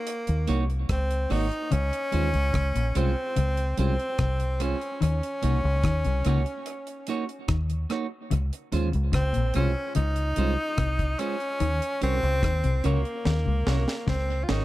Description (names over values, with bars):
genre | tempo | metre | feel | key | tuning
roots reggae | 73 BPM | 4/4 | straight | unclear | A4 = 440 Hz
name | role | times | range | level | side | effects
bright tenor saxophone | melody | 0.0-14.6 s | Bb3 to F4 | -30 LUFS | equal | tape echo
deep reggae drum kit | drums | 0.1-14.6 s | hi-hat, kick drum, rim click, snare drum | -30 LUFS | equal | tape echo
clean electric guitar | accompaniment | 0.3-14.6 s | Ab3 to Db5 | -32 LUFS | right 6 dB | tape echo
deep dub fingered electric bass | bass | 0.3-14.6 s | Ab1 to Eb2 | -25 LUFS | equal | none
mellow electric guitar | riff | 1.7-14.6 s | Ab2 to Eb3 | -30 LUFS | left 4 dB | tremolo
room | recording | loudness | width
small room ambience | echo-heavy mix | -24 LUFS | side -16 dB against mid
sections
0.0-14.6 A section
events
drum fill 13.3-14.6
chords
0.0 Ebm7; 1.7 Dbmaj7; 5.0 Ebm7; 8.3 Dbmaj7; 11.6 Ebm7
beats
0.07 0.89 | 1.71 2.54 3.36 4.19 | 5.01 5.84 6.66 7.49 | 8.31 9.13 9.96 10.78 | 11.61 12.43 13.25 14.07